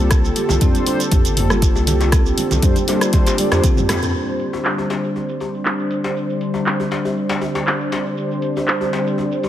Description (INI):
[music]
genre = afro house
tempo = 119 BPM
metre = 4/4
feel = swing 53% on 16ths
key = unclear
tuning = A4 = 441 Hz
[part]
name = warm analog pad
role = sustained chords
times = 0.0-9.5 s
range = D3 to D5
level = -27 LUFS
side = right 1 dB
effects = chorus, sidechain pumping
[part]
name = marimba with soft mallets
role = arpeggios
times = 0.0-3.8 s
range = Bb3 to G4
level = -23 LUFS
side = right 1 dB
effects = sidechain pumping, tape echo
[part]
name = round analog bass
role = bass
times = 0.0-3.6 s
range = G1 to F2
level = -19 LUFS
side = equal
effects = tube saturation, sidechain pumping
[part]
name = deep house drum kit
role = drums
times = 0.0-9.5 s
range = handclaps, hi-hat, rim click, shaker, toms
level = -22 LUFS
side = equal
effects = low-pass filter on hats, low-pass filter on perc, low-pass filter on snare, low-pass filter on toms, low-pass filter on room
[part]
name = electronic kick drum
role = drums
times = 0.1-3.7 s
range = none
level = -16 LUFS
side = equal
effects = none
[part]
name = congas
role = percussion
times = 0.4-4.0 s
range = none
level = -27 LUFS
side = right 2 dB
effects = none
[part]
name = djembe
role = percussion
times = 0.5-9.5 s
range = none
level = -27 LUFS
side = left 4 dB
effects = none
[part]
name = mellow synth brass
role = stabs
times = 0.6-9.5 s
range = G3 to D5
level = -22 LUFS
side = left 1 dB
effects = chorus, sidechain pumping, tape echo
[sound]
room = light reverb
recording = none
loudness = -16 LUFS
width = side -11 dB against mid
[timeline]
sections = 0.0-4.1 A section; 4.1-9.5 B section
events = drum fill 3.6-4.1; band accent 3.9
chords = 0.0 Csus2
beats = | 0.11 0.61 1.12 1.62 | 2.13 2.63 3.13 3.64 | 4.14 4.65 5.15 5.66 | 6.16 6.66 7.17 7.67 | 8.18 8.68 9.19